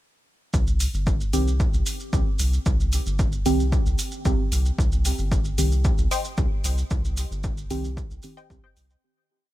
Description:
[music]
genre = dub techno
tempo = 113 BPM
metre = 4/4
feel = straight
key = C minor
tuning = A4 = 439 Hz
[part]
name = round analog bass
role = bass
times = 0.5-9.0 s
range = G1 to C2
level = -24 LUFS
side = equal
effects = sidechain pumping
[part]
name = electronic kick drum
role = drums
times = 0.5-8.6 s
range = none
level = -24 LUFS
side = equal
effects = none
[part]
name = maracas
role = percussion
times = 0.5-9.0 s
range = none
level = -34 LUFS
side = right 3 dB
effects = none
[part]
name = electronic hi-hat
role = drums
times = 0.8-8.9 s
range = none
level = -34 LUFS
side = left 1 dB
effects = none
[part]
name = deep mellow chord stab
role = stabs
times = 1.3-8.5 s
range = Eb3 to G4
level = -29 LUFS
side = right 2 dB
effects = chorus, phaser, sidechain pumping, dub echo
[part]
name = filtered dub chord stab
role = riff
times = 6.1-8.8 s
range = C5 to G5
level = -32 LUFS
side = left 5 dB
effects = phaser, cassette tape, sidechain pumping, dub echo
[sound]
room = digital ambience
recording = none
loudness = -21 LUFS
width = side -15 dB against mid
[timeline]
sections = 0.5-9.0 groove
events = fade-out 6.2-9.0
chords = 0.5 Cm

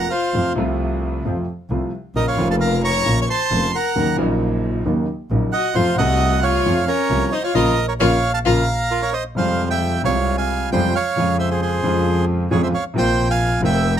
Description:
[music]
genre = tango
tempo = 133 BPM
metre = 4/4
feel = rubato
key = Bb harmonic minor, F harmonic minor from 9.4 s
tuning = A4 = 441 Hz
[part]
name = bandoneon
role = melody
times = 0.0-14.0 s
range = F4 to Db6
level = -20 LUFS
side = right 3 dB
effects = none
[part]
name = warm violin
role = second line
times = 0.0-8.6 s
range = Db4 to Db5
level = -24 LUFS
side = left 9 dB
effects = none
[part]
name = warm concert grand piano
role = accompaniment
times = 0.0-14.0 s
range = F1 to A4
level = -22 LUFS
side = left 1 dB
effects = none
[part]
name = clear double bass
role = bass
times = 0.0-14.0 s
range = F1 to F2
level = -22 LUFS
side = equal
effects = none
[sound]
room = little or no reverb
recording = close, detailed microphones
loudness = -17 LUFS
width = side -9 dB against mid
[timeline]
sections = 0.0-9.4 A section; 9.4-14.0 B section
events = band accent 7.6-9.4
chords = 0.3 F; 2.2 Bbm; 4.0 Ebm7; 5.8 F; 7.6 Bbm; 9.4 Fmadd9; 11.2 Db/F; 13.0 Bbsus2

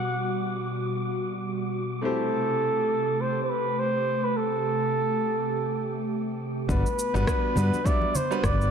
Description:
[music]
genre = sunset chillout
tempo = 103 BPM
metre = 4/4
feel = swing 57% on 16ths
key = unclear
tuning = A4 = 438 Hz
[part]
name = trumpet with bucket mute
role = melody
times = 0.0-8.7 s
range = A4 to F#5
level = -27 LUFS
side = right 1 dB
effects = digital delay
[part]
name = clear concert grand piano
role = accompaniment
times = 0.0-8.7 s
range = G3 to E5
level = -31 LUFS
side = moving between left 4 dB and right 8 dB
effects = auto-pan, ping-pong delay
[part]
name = airy breathy pad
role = sustained chords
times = 0.0-8.7 s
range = B2 to G4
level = -30 LUFS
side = right 1 dB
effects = chorus
[part]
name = wind-like tuned noise texture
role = texture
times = 0.0-6.7 s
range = D6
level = -42 LUFS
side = right 2 dB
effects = built-in reverb
[part]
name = mellow fretless electric bass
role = bass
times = 6.7-8.7 s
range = G1 to G2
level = -24 LUFS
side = equal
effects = none
[part]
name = electronic kick drum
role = drums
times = 6.7-8.6 s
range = none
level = -27 LUFS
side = equal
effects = overdrive, studio reverb
[part]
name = electronic shaker and rim click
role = drums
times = 6.7-8.7 s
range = none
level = -34 LUFS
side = left 1 dB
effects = overdrive, low-pass filter on perc, studio reverb, low-pass filter on snare
[part]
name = congas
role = percussion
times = 7.6-8.6 s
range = none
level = -33 LUFS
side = equal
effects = none
[sound]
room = moderate concert hall reverb, RT60 1.8 s, small room ambience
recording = dark, warm production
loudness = -24 LUFS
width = side -7 dB against mid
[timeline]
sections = 0.0-6.7 A section; 6.7-8.7 B section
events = filter sweep on analog synth pad 0.0-6.7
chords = 0.0 Gmaj7; 2.0 Am7; 6.7 Gmaj7

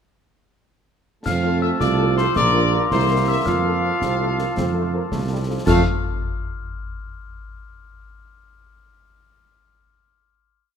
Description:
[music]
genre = military-style march for wind band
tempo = 109 BPM (dotted quarters)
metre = 6/8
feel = straight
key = F major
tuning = A4 = 441 Hz
[part]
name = warm woodwind section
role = second line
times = 1.2-5.8 s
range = E4 to Bb5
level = -31 LUFS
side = equal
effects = none
[part]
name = warm trombone section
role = sustained chords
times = 1.2-5.8 s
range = E3 to C4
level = -30 LUFS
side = right 4 dB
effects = none
[part]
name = clear trumpet section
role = melody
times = 1.3-5.8 s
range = C5 to F5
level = -26 LUFS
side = equal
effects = none
[part]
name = glockenspiel with rubber mallets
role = second line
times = 1.3-5.9 s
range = C6 to F6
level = -26 LUFS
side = left 7 dB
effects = none
[part]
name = warm euphonium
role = second line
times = 1.3-5.4 s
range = C4 to F4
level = -26 LUFS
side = right 7 dB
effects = none
[part]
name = mellow tuba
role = bass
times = 1.3-5.8 s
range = Bb1 to F2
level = -22 LUFS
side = right 4 dB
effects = none
[part]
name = concert snare drum, clash cymbals and concert bass drum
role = drums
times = 1.3-5.9 s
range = none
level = -28 LUFS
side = left 2 dB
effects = none
[part]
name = warm French horn section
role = accompaniment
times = 1.4-5.8 s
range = F3 to Bb4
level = -29 LUFS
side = left 9 dB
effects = none
[sound]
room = moderate recital hall reverb, RT60 1.5 s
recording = none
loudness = -18 LUFS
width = side -7 dB against mid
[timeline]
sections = 1.3-5.7 A section; 5.7-6.8 final chord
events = none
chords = 1.3 F; 2.4 Bb; 2.9 C7; 3.5 F

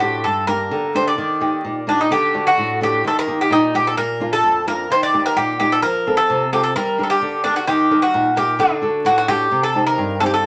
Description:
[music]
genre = greek folk, Greek bouzouki band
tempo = 129 BPM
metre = 2/4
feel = straight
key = unclear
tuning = A4 = 441 Hz
[part]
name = Greek bouzouki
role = melody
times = 0.0-10.5 s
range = D4 to D5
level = -19 LUFS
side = equal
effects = none
[part]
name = flamenco guitar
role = accompaniment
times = 0.0-10.5 s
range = F2 to Bb4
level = -24 LUFS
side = equal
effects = none
[sound]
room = wet studio reverb, RT60 0.5 s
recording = vinyl crackle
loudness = -18 LUFS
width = mono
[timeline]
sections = 0.0-2.1 A section; 2.1-9.5 B section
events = none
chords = 0.2 Gm; 1.2 Eb; 2.1 D; 3.0 Eb; 4.0 Bb; 4.9 Eb; 5.8 F; 6.8 Gm; 7.7 Eb; 8.6 D; 9.5 Cm

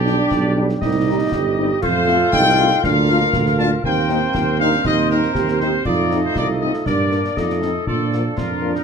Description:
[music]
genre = military-style march for wind band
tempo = 119 BPM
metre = 2/4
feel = straight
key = Bb major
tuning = A4 = 440 Hz
[part]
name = mellow trumpet section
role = melody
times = 0.0-8.8 s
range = G4 to A5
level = -21 LUFS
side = left 3 dB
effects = none
[part]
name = clear woodwind section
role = second line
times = 0.0-8.8 s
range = Eb4 to F5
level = -25 LUFS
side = left 3 dB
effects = none
[part]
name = warm euphonium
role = second line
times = 0.0-8.8 s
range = Bb3 to G4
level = -25 LUFS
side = right 5 dB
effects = none
[part]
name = warm trombone section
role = sustained chords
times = 0.0-8.8 s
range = F3 to F4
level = -24 LUFS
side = right 3 dB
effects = none
[part]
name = mellow tuba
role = bass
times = 0.0-8.8 s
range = G1 to Bb2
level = -21 LUFS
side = right 4 dB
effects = none
[part]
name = warm French horn section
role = accompaniment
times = 0.1-8.7 s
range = F3 to F4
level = -25 LUFS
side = left 6 dB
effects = none
[part]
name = concert snare drum, concert bass drum and clash cymbals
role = drums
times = 0.1-8.8 s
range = none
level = -28 LUFS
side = left 2 dB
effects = none
[sound]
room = light reverb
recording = close, detailed microphones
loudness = -15 LUFS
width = side -6 dB against mid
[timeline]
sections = 0.0-8.8 A section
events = none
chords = 0.0 G/B; 0.8 Cm; 1.8 F; 2.8 Bb/D; 3.8 Cm7/Eb; 5.9 F7; 6.9 Gm; 7.4 F7; 7.9 Bb

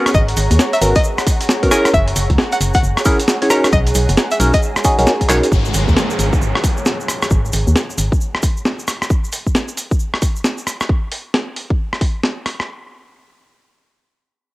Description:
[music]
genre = UK garage, two-step garage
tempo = 134 BPM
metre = 4/4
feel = swing 63% on 16ths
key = G# minor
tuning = A4 = 439 Hz
[part]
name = string-like resonator pluck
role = melody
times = 0.0-5.4 s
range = C#5 to A#5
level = -22 LUFS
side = equal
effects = chorus, tape echo
[part]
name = barky tine electric piano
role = stabs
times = 0.0-5.5 s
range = B3 to C#5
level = -18 LUFS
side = equal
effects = phaser, cassette tape, analog delay
[part]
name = granular cloud pad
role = texture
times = 0.0-9.1 s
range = G#4 to A#5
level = -24 LUFS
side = right 1 dB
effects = built-in reverb, sidechain pumping, cassette tape
[part]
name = organ-like FM bass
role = bass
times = 0.1-8.1 s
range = F#1 to D#2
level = -16 LUFS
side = equal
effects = sidechain pumping
[part]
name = breakbeat sampler-style drum kit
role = drums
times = 0.1-12.7 s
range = handclaps, hi-hat, rim click, snare drum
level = -19 LUFS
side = equal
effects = cassette tape
[part]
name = electronic kick drum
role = drums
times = 0.1-12.1 s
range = none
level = -16 LUFS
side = equal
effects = cassette tape
[part]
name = cabasa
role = percussion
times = 0.1-10.9 s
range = none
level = -27 LUFS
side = right 1 dB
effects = none
[part]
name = downlifter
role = sound effects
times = 5.5-9.1 s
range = none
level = -24 LUFS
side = equal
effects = none
[sound]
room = light reverb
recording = home recording on cassette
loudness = -14 LUFS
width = side -19 dB against mid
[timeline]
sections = 0.0-5.5 A section; 5.5-12.7 B section; 12.7-14.5 C section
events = drop 0.0-5.5; drum fill 5.3; fade-out on ambient pad 5.5-9.1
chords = 0.0 G#m11; 1.7 F#9; 3.5 Bmaj9; 5.5 G#9sus4; 8.9 F#add9; 10.7 N.C.

